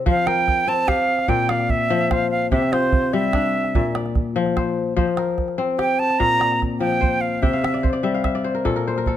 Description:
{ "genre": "west african traditional, West African string and xylophone music", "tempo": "98 BPM (dotted quarters)", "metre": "12/8", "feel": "straight", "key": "unclear", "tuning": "A4 = 440 Hz", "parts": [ { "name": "kora", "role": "arpeggios", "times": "0.0-9.2 s", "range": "Bb2 to G5", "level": "-21 LUFS", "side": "left 4 dB", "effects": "none" }, { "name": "silver concert flute", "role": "melody", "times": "0.1-7.9 s", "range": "C5 to Bb5", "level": "-20 LUFS", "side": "right 3 dB", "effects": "none" }, { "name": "calabash", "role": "percussion", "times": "0.1-9.2 s", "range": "none", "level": "-23 LUFS", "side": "right 3 dB", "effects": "none" } ], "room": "light reverb", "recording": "close, detailed microphones", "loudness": "-18 LUFS", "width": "side -11 dB against mid", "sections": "0.1-9.2 A section", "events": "kora fill 7.4-9.2", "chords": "0.1 F5; 1.3 Bb; 2.5 C; 3.7 Bb; 5.0 F5; 6.2 Bb; 7.4 C; 8.7 Bb5", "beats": "| 0.07 0.68 1.29 1.91 | 2.52 3.13 3.75 4.36 | 4.97 5.59 6.20 6.82 | 7.43 8.05 8.66" }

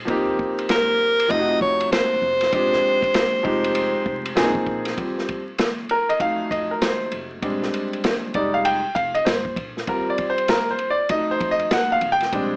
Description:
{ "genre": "hip hop, jazz-hop", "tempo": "98 BPM", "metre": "4/4", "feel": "swing 63% on 16ths", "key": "Eb major", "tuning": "A4 = 440 Hz", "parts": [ { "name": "warm concert grand piano", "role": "accompaniment", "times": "0.0-12.6 s", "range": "C3 to G5", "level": "-24 LUFS", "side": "equal", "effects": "none" }, { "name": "upright bass", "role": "bass", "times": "0.1-12.6 s", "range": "F1 to F2", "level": "-39 LUFS", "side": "equal", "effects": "none" }, { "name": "open jazz drum kit", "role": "drums", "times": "0.1-12.5 s", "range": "hi-hat, kick drum, ride cymbal, snare drum", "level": "-28 LUFS", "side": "equal", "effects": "vintage 12-bit sampler grit" }, { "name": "bright alto saxophone", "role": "melody", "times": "0.7-4.3 s", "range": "Bb4 to Eb5", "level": "-22 LUFS", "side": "equal", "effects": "none" } ], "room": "moderate small room reverb, RT60 0.5 s", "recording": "vinyl crackle, small speaker sound", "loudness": "-22 LUFS", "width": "mono", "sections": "0.0-5.0 A section; 5.0-12.6 B section", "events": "grand piano solo 5.0-12.6", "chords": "0.1 Eb69; 1.3 F7b9; 2.5 Bb13; 3.4 Fm9; 4.4 Bb9sus4; 5.0 Eb69; 6.2 F7b9; 7.4 Bb13; 8.3 Fm9; 9.9 Eb69; 11.1 F7b9", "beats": "| 0.08 0.69 1.30 1.92 | 2.53 3.14 3.75 4.37 | 4.98 5.59 6.20 6.82 | 7.43 8.04 8.65 9.26 | 9.88 10.49 11.10 11.71 | 12.32" }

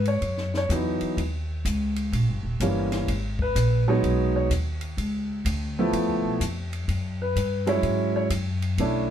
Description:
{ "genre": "jazz piano trio", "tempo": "126 BPM", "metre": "4/4", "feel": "swing 66% on 8ths", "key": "C# minor", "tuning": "A4 = 440 Hz", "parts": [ { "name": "warm upright piano", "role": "melody", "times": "0.0-9.1 s", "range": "E3 to C#5", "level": "-25 LUFS", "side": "right 1 dB", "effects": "none" }, { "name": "upright bass", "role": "bass", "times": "0.0-9.1 s", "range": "D#1 to G#2", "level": "-26 LUFS", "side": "equal", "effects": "none" }, { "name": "compact cocktail drum kit", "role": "drums", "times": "0.1-8.9 s", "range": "hi-hat, kick drum, ride cymbal, snare drum", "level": "-34 LUFS", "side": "left 1 dB", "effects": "none" } ], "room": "moderate club reverb, RT60 0.7 s", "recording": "heard from further back in the room", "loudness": "-23 LUFS", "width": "side -9 dB against mid", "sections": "0.0-9.1 A section", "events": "upright piano solo 0.0-9.1", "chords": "0.0 C#m11; 1.2 D#7b9; 3.1 G#m7; 5.0 C#7alt; 6.9 F#sus2", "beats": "0.22 0.70 | 1.18 1.65 2.13 2.60 | 3.08 3.55 4.03 4.50 | 4.98 5.46 5.93 6.41 | 6.88 7.36 7.83 8.31 | 8.79" }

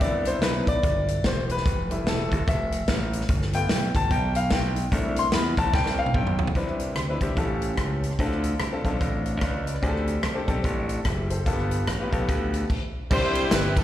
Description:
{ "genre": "uptempo gospel", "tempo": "146 BPM", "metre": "4/4", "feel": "swing 61% on 8ths", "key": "C major", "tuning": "A4 = 441 Hz", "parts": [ { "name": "bright grand piano", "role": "accompaniment", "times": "0.0-13.7 s", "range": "G2 to C6", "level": "-28 LUFS", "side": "left 2 dB", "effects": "slapback echo" }, { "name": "glassy slap bass", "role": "bass", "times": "0.0-13.8 s", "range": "E1 to E2", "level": "-27 LUFS", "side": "equal", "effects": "none" }, { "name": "natural country drum kit", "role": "drums", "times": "0.0-13.8 s", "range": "crash cymbal, hi-hat, kick drum, ride cymbal, rim click, snare drum, toms", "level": "-26 LUFS", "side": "equal", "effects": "none" }, { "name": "warm horn section", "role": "melody", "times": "13.1-13.8 s", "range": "E4 to C5", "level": "-25 LUFS", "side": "right 1 dB", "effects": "slapback echo" }, { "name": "tambourine and handclaps", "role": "percussion", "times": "13.1-13.8 s", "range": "none", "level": "-38 LUFS", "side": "right 3 dB", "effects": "slapback echo" } ], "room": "light reverb", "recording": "live gig heard through the venue's PA, recital hall reverb", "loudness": "-22 LUFS", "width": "side -12 dB against mid", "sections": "0.0-6.5 A section; 6.5-13.1 B section", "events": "grand piano solo 0.0-6.5; drum fill 5.7-6.5; stop 12.7-13.1", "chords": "0.0 Cmaj7; 1.7 Fmaj7; 3.3 G7; 4.9 C6; 6.5 Cmaj9; 7.4 A7b13; 8.2 Dm7; 9.8 D7sus4; 11.5 G9; 13.1 Cadd9", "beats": "| 0.02 0.43 0.84 1.25 | 1.66 2.07 2.48 2.88 | 3.29 3.70 4.11 4.51 | 4.92 5.33 5.73 6.14 | 6.55 6.95 7.36 7.77 | 8.18 8.59 9.00 9.41 | 9.82 10.23 10.64 11.05 | 11.47 11.88 12.29 12.70 | 13.11 13.52" }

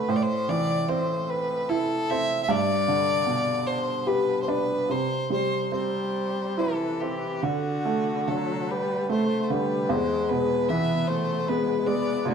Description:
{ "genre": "celtic folk, Celtic slow air", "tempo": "70-77 BPM", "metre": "3/4", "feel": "rubato", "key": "unclear", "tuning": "A4 = 440 Hz", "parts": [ { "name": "clear fiddle", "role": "melody", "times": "0.0-12.3 s", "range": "F#4 to E5", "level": "-27 LUFS", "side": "left 1 dB", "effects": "none" }, { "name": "bright upright piano", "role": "accompaniment", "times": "0.0-12.3 s", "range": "D2 to G4", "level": "-26 LUFS", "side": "right 2 dB", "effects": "none" }, { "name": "rich viola", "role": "second line", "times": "5.7-12.3 s", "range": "D3 to B3", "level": "-29 LUFS", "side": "left 5 dB", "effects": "none" } ], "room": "wet stone room reverb, RT60 1.2 s", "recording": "band playing live in one room", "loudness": "-23 LUFS", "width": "side -6 dB against mid", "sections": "0.0-12.3 A section", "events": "none", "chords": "0.1 Am; 2.5 G; 4.9 C; 7.4 D; 9.9 E", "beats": "| 0.07 0.88 1.69 | 2.48 3.27 4.07 | 4.89 5.72 6.57 | 7.42 8.26 9.09 | 9.89 10.68 11.47 | 12.26" }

